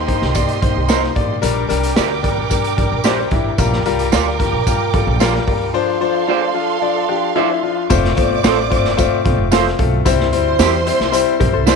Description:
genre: uptempo 1960s-style soul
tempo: 111 BPM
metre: 4/4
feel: straight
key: F major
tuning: A4 = 441 Hz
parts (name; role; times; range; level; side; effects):
- warm studio violin section; second line; 0.0-11.8 s; G4 to D6; -22 LUFS; right 13 dB; none
- upright bass; bass; 0.0-11.8 s; E1 to E2; -21 LUFS; right 1 dB; none
- clear concert grand piano; accompaniment; 0.1-11.8 s; F3 to D5; -18 LUFS; left 11 dB; none
- raw garage drum kit; drums; 0.1-11.8 s; hi-hat, kick drum, snare drum; -19 LUFS; right 1 dB; none
- tambourine; percussion; 0.3-11.8 s; none; -30 LUFS; right 17 dB; none
- electric guitar through a small old amp; stabs; 0.9-11.8 s; Eb4 to D5; -22 LUFS; right 14 dB; none
- hollow-body jazz guitar; riff; 11.4-11.8 s; G4 to D5; -20 LUFS; left 13 dB; none
room: light reverb, small room ambience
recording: 1960s-style stereo with parts hard left and right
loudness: -14 LUFS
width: side -5 dB against mid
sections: 0.0-7.9 A section; 7.9-11.8 B section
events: none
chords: 0.0 Cm7; 1.4 Bb6; 3.6 Gm7/Bb; 5.8 Dm7; 7.9 F; 10.1 C

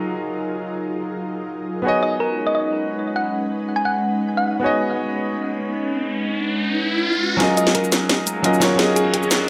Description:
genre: liquid drum and bass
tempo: 173 BPM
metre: 4/4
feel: swing 53% on 16ths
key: F# major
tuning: A4 = 441 Hz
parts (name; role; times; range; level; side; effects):
- clear concert grand piano; accompaniment; 0.0-9.5 s; F#3 to D#5; -25 LUFS; equal; low-pass filter, delay
- ethereal airy pad; sustained chords; 0.0-9.5 s; F#3 to B4; -28 LUFS; equal; ensemble chorus, built-in reverb, sidechain pumping
- thumb-piano-like synth pluck; melody; 2.0-4.6, 7.6-9.5 s; G#4 to G#5; -26 LUFS; equal; chorus, delay
- riser; sound effects; 5.6-9.5 s; none; -28 LUFS; equal; none
- drum and bass drum kit; drums; 7.4-9.4 s; cabasa, hi-hat, snare drum; -22 LUFS; equal; high-pass filter on snare, low-pass filter on snare, high-pass filter on hats, low-pass filter on hats, high-pass filter on perc, low-pass filter on perc
- electronic kick drum; drums; 7.4-9.2 s; none; -37 LUFS; equal; none
room: moderate digital room reverb, RT60 1.0 s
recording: none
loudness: -21 LUFS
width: mono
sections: 0.0-7.4 A section; 7.4-9.5 B section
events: riser 5.6-7.4; build-up 7.4-9.5; drum fill 7.4-9.5; filter sweep on synth pluck 7.4-9.5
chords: 0.0 F#maj13; 1.9 B69; 7.4 F#maj13

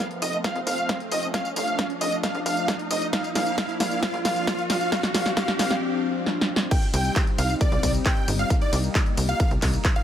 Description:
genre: uplifting trance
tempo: 134 BPM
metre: 4/4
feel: straight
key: C minor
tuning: A4 = 440 Hz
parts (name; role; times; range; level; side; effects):
- dense compressed supersaw; melody; 0.0-10.0 s; D5 to G5; -28 LUFS; right 1 dB; sidechain pumping, low-pass filter, tape echo
- lush unison pad; sustained chords; 0.0-10.0 s; F3 to Eb4; -31 LUFS; left 2 dB; chorus, phaser, sidechain pumping
- electronic kick drum; drums; 0.0-9.9 s; none; -24 LUFS; equal; high-pass filter on kick, high-pass filter on room
- punchy analog drum machine; drums; 0.0-10.0 s; crash cymbal, handclaps, hi-hat, ride cymbal, snare drum, tambourine; -28 LUFS; equal; none
- riser; sound effects; 0.0-5.8 s; none; -32 LUFS; right 1 dB; none
- tight sequencer bass; bass; 0.2-9.8 s; F1 to C2; -28 LUFS; equal; sidechain pumping, high-pass filter
room: light reverb, digital ambience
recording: none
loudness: -21 LUFS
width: side -10 dB against mid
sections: 0.0-6.7 A section; 6.7-10.0 B section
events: build-up 0.0-6.7; drum fill 0.0-5.8, 6.3-6.7; riser 0.0-5.8; drop 6.7-10.0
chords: 0.0 F; 3.1 Bb; 6.7 Cm

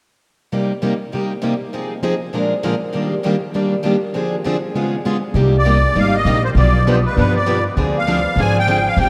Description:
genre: acoustic string swing (jazz manouche)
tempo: 198 BPM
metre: 4/4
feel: swing 60% on 8ths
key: C minor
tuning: A4 = 440 Hz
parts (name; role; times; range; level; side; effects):
- picked acoustic archtop guitar; accompaniment; 0.5-9.1 s; Bb2 to B4; -26 LUFS; equal; none
- picked plugged-in steel-string acoustic guitar; accompaniment; 0.5-9.1 s; Bb2 to B4; -22 LUFS; equal; none
- upright bass; bass; 5.3-9.1 s; G1 to G2; -19 LUFS; equal; none
- musette accordion; melody; 5.6-9.1 s; B4 to Ab5; -20 LUFS; equal; none
room: wet cathedral reverb, RT60 6.4 s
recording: in a vast, echoing space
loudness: -18 LUFS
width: mono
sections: 0.5-5.4 A section; 5.4-9.1 B section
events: none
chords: 0.5 Cm7; 1.7 Fm7; 2.3 Bb7; 2.9 Ebmaj7; 4.1 Dm7b5; 4.7 Db7; 5.4 Cm9; 6.6 G7/B; 7.8 Dm7b5

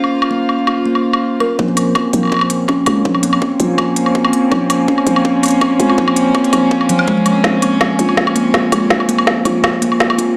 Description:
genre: half-time drum and bass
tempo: 164 BPM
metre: 4/4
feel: half-time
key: Bb minor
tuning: A4 = 442 Hz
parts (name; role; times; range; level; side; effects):
- rich chamber string section; sustained chords; 0.0-10.4 s; Bb3 to F5; -20 LUFS; equal; sidechain pumping, low-pass filter
- organic electronic drum kit; drums; 0.0-10.3 s; hi-hat, snare drum, woodblock; -20 LUFS; equal; low-pass filter on perc, low-pass filter on hats, low-pass filter on snare, low-pass filter on room
- metallic inharmonic drone; texture; 0.0-1.6 s; C5; -34 LUFS; equal; chorus, built-in reverb
- kalimba; arpeggios; 0.3-10.3 s; F3 to Bb4; -18 LUFS; equal; delay
- growling 808-style bass; bass; 1.6-10.2 s; Bb1 to Db2; -23 LUFS; equal; high-pass filter
- electronic kick drum; drums; 1.6-10.1 s; none; -24 LUFS; equal; high-pass filter on kick
room: light reverb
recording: played on a big sound system in a bare room, stone room reverb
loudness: -14 LUFS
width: mono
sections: 0.0-1.6 A section; 1.6-10.4 B section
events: filter sweep on kalimba 0.0-1.6; build-up 1.6-10.4; filter sweep on string section 1.6-10.4; drum fill 7.4-10.4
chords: 0.0 Bbsus2; 1.6 Bbmadd9

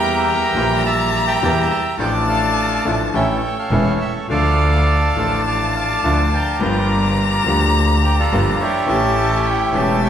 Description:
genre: tango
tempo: 105 BPM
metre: 4/4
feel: rubato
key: D harmonic minor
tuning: A4 = 441 Hz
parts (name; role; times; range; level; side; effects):
- bandoneon; melody; 0.0-10.1 s; D4 to Bb5; -20 LUFS; right 2 dB; none
- warm violin; second line; 0.0-10.1 s; F5 to Bb5; -22 LUFS; left 3 dB; none
- bright grand piano; accompaniment; 0.0-10.1 s; E1 to A4; -22 LUFS; left 2 dB; none
- bandoneon; stabs; 0.0-10.1 s; A3 to G4; -26 LUFS; equal; none
- clear double bass; bass; 0.0-10.1 s; E1 to E2; -20 LUFS; right 1 dB; none
room: wet recital hall reverb, RT60 1.6 s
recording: recorded in a church or concert hall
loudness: -15 LUFS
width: side -9 dB against mid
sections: 0.0-10.1 A section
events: none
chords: 0.0 Edim; 2.0 Dm/A; 3.1 A; 4.3 Dm; 6.6 Gm7; 8.9 A7

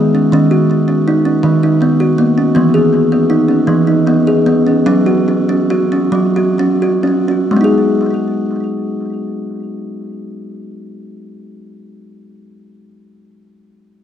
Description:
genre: world meditative, meditative tuned percussion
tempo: 41-54 BPM (dotted quarters)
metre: 6/8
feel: straight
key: G# minor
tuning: A4 = 440 Hz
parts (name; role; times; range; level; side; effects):
- kalimba; solo; 0.0-12.0 s; D#3 to G#4; -12 LUFS; equal; ping-pong delay
room: wet echo chamber reverb, RT60 2.0 s, small room ambience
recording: worn, warbling old tape, cassette tape, warbly pitch drift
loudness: -11 LUFS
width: side -9 dB against mid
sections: 0.0-7.5 A section; 7.5-10.5 B section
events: slowing down 2.6-7.5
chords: 0.3 D#m; 2.6 E; 4.9 F#5; 7.5 G#m

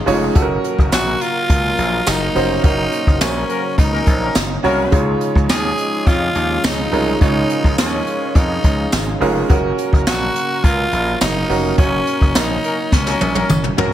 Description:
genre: 1980s-style pop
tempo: 105 BPM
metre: 4/4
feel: straight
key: unclear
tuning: A4 = 442 Hz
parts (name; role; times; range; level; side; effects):
- growling tenor saxophone; melody; 0.0-13.7 s; Db4 to Ab4; -21 LUFS; equal; tape echo
- clear baby grand piano; accompaniment; 0.0-13.9 s; Db3 to Db5; -21 LUFS; right 2 dB; none
- lush unison pad; sustained chords; 0.0-13.9 s; Db3 to Bb4; -27 LUFS; left 1 dB; chorus
- gritty slap bass; bass; 0.1-13.9 s; F1 to F2; -22 LUFS; equal; overdrive
- jazz brush drum kit; drums; 0.1-13.9 s; hi-hat, kick drum, snare drum, tambourine, toms; -17 LUFS; equal; gated reverb
- tambourine; percussion; 0.9-13.6 s; none; -35 LUFS; left 4 dB; none
- warm horn section; stabs; 3.5-5.0, 12.6-13.9 s; F3 to Bb4; -25 LUFS; left 4 dB; none
room: studio reverb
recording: none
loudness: -14 LUFS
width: side -12 dB against mid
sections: 0.0-13.9 A section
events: band accent 2.6-4.9, 11.8-13.9; drum fill 12.9-13.9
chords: 0.4 Gb; 4.9 Dbadd9; 9.5 Gb

